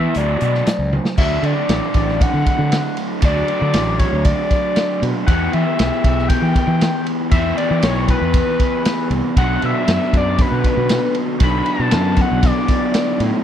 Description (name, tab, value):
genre	indie rock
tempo	117 BPM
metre	4/4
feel	straight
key	unclear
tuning	A4 = 440 Hz
part	overdriven synth lead	melody	0.0-13.2 s	B4 to B5	-22 LUFS	left 3 dB	distortion, tape echo
part	raw garage guitar	riff	0.0-13.4 s	B2 to G4	-20 LUFS	right 1 dB	overdrive
part	fuzz fingered electric bass	bass	0.0-13.3 s	A1 to E3	-20 LUFS	equal	overdrive
part	raw garage drum kit	drums	0.1-13.3 s	crash cymbal, hi-hat, kick drum, ride cymbal, snare drum, toms	-19 LUFS	equal	none
part	warm analog pad	sustained chords	9.4-13.4 s	D3 to A4	-31 LUFS	right 2 dB	none
room	little or no reverb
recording	dry, close 1970s-style studio recording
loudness	-15 LUFS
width	side -10 dB against mid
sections	0.0-1.2 A section; 1.2-13.4 B section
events	drum fill 0.9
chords	0.2 D; 5.3 Em; 9.4 Bm7